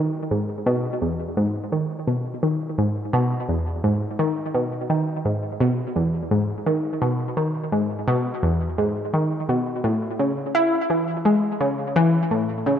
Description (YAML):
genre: ambient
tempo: 85 BPM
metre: 4/4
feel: straight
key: E major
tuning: A4 = 445 Hz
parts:
  - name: analog pluck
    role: solo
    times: 0.0-12.8 s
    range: E2 to E4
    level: -20 LUFS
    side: equal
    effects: chorus, tape echo
room: wet spring reverb, RT60 2.7 s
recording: echo-heavy mix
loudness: -20 LUFS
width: side -9 dB against mid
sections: 0.0-12.8 A section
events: none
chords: none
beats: 0.66 | 1.37 2.08 2.78 3.49 | 4.19 4.90 5.60 6.31 | 7.02 7.72 8.43 9.13 | 9.84 10.54 11.25 11.96 | 12.66